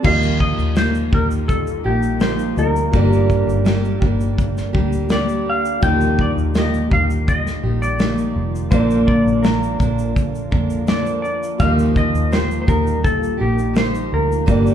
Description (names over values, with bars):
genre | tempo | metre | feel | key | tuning
acoustic pop | 83 BPM | 4/4 | straight | unclear | A4 = 435 Hz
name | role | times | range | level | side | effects
felt-muted upright piano | accompaniment | 0.0-14.7 s | G3 to Eb5 | -30 LUFS | left 3 dB | none
fingerpicked steel-string acoustic guitar | accompaniment | 0.0-14.7 s | G2 to Bb4 | -21 LUFS | right 2 dB | none
shimmering ambient pad | sustained chords | 1.4-14.7 s | D3 to G4 | -28 LUFS | left 1 dB | chorus, built-in reverb
vintage muted fingered electric bass | bass | 0.0-14.7 s | F1 to F2 | -21 LUFS | left 1 dB | none
modern studio drum kit | drums | 0.0-14.7 s | crash cymbal, kick drum, shaker, snare drum | -20 LUFS | equal | none
clean lap steel guitar | melody | 0.1-14.7 s | G4 to G5 | -23 LUFS | equal | none
room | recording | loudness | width
wet large studio reverb, RT60 1.4 s | band playing live in one room | -15 LUFS | side -9 dB against mid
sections
0.1-14.7 A section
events
none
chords
0.1 Ebadd9; 2.9 Gm; 5.8 Ebadd9; 8.7 Bb; 11.6 Ebadd9